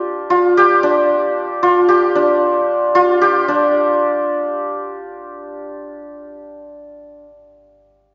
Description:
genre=indian classical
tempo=114 BPM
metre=4/4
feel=straight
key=unclear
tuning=A4 = 440 Hz
part: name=santur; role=solo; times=0.0-7.2 s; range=D4 to G4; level=-16 LUFS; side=equal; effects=none
room=wet concert hall reverb, RT60 1.7 s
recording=recorded in a church or concert hall, nothing above 7.5 kHz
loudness=-15 LUFS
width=mono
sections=0.0-3.5 A section; 3.5-5.6 B section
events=none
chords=none

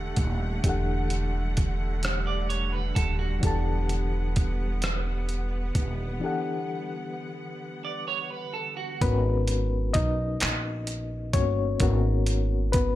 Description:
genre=slow six-eight R&B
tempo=43 BPM (dotted quarters)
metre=6/8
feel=straight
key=unclear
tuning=A4 = 441 Hz
part: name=bright reed electric piano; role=accompaniment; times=0.0-13.0 s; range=E3 to A5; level=-31 LUFS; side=left 4 dB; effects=fast tremolo
part: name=warm studio string section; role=sustained chords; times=0.0-9.0 s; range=D3 to F#5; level=-36 LUFS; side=right 1 dB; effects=none
part: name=upright bass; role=bass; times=0.0-13.0 s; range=D#1 to B1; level=-27 LUFS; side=equal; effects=none
part: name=dusty soul sampler-style drum kit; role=drums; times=0.2-13.0 s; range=handclaps, hi-hat, kick drum, rim click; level=-27 LUFS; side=right 1 dB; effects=none
part: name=clean electric guitar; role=second line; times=2.3-3.6, 7.8-9.2 s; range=F#4 to D5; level=-32 LUFS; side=right 7 dB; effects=lush chorus
room=digital ambience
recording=none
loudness=-25 LUFS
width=side -14 dB against mid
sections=0.0-9.0 A section; 9.0-13.0 B section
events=break 6.2-9.0; reed electric piano solo 9.0-13.0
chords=0.0 Em11; 9.0 G#m11

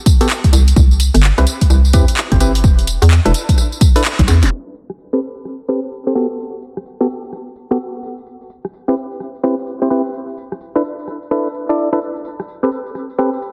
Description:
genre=UK garage, two-step garage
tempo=128 BPM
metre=4/4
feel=swing 63% on 16ths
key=A dorian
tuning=A4 = 445 Hz
part: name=electronic kick drum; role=drums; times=0.1-4.3 s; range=none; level=-14 LUFS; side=equal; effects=overdrive, small room ambience
part: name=house drum kit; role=drums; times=0.1-13.5 s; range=handclaps, hi-hat, rim click, snare drum, tambourine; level=-23 LUFS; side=equal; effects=overdrive, small room ambience
part: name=percussive organ stab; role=stabs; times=0.2-13.3 s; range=B3 to D5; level=-21 LUFS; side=equal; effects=chorus, digital delay
part: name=hollow knocking FM bass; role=bass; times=0.5-4.5 s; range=E1 to E2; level=-13 LUFS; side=equal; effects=sidechain pumping
room=light reverb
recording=dense, heavily limited modern master, vinyl crackle, low-pass filter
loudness=-15 LUFS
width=mono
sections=0.0-4.5 A section; 4.5-13.5 B section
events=filter sweep on synth stab 0.0-4.5, 4.5-13.5; band accent 4.0; drum fill 4.3; filter sweep 4.5-13.5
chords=0.0 Gmaj9; 0.5 Cmaj7; 2.6 E7sus4; 4.5 Am9; 6.2 Gmaj9; 8.0 Cmaj7; 10.1 E7sus4; 12.0 Am9

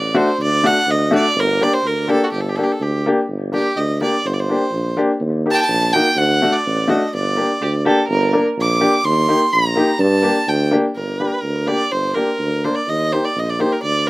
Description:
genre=klezmer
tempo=125 BPM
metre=2/4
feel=straight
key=G harmonic minor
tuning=A4 = 440 Hz
part: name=rich violin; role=melody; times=0.0-14.1 s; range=F#4 to D6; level=-19 LUFS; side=right 1 dB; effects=none
part: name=breathy tuba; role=bass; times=0.0-14.1 s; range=G1 to G2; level=-20 LUFS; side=equal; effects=none
part: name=clear upright piano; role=accompaniment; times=0.1-13.7 s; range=A3 to Bb4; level=-19 LUFS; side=left 2 dB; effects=none
part: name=warm violin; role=second line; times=7.6-8.4 s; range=G4 to Bb4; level=-21 LUFS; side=right 3 dB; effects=none
room=little or no reverb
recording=recorded outdoors, with no room sound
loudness=-15 LUFS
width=side -20 dB against mid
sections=0.0-3.3 A section; 3.3-11.0 B section; 11.0-14.1 C section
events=violin solo 3.3-11.0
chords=0.0 D; 1.4 Gm; 5.2 Eb; 6.2 D; 7.1 Gm; 9.0 Eb; 10.0 Gm; 12.9 Eb

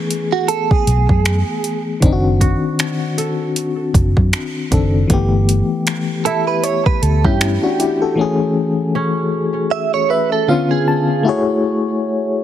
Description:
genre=contemporary R&B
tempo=78 BPM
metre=4/4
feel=swing 58% on 16ths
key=unclear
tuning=A4 = 439 Hz
part: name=FM electric piano with tremolo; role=accompaniment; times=0.0-12.4 s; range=D3 to A5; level=-18 LUFS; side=left 4 dB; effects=none
part: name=kora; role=texture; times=0.0-10.8 s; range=C#4 to A4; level=-27 LUFS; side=right 4 dB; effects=digital delay
part: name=smooth R&B drum kit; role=drums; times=0.1-8.0 s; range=finger snaps, hi-hat, kick drum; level=-18 LUFS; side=equal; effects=overdrive
part: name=direct-recorded clean electric guitar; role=arpeggios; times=0.3-11.2 s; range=E#4 to E5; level=-19 LUFS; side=right 10 dB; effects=analog chorus, digital delay
part: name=vintage muted fingered electric bass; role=bass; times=0.9-7.6 s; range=F#1 to G2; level=-15 LUFS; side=equal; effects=none
room=light reverb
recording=heavily compressed radio sound, multiband compression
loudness=-14 LUFS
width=side -11 dB against mid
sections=0.0-11.3 A section; 11.3-12.4 B section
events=FM electric piano fill 9.7-11.3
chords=0.0 F#m11; 2.0 D7b9/F#; 5.1 G69; 8.2 Amaj7; 10.5 C#7b9; 11.3 F#m9

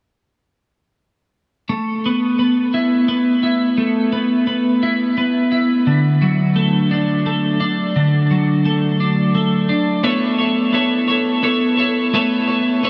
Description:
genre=rock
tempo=58 BPM (dotted quarters)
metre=6/8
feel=straight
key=A major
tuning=A4 = 442 Hz
part: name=twelve-string electric guitar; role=solo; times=1.7-12.9 s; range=D3 to C#5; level=-17 LUFS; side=equal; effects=analog chorus, diffuse ambient delay
room=wet huge ambient reverb, RT60 7.0 s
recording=dreamy mix soaked in reverb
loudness=-17 LUFS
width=mono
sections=1.7-10.0 A section; 10.0-12.9 B section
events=none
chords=1.7 Asus2; 5.9 D; 10.0 Aadd9

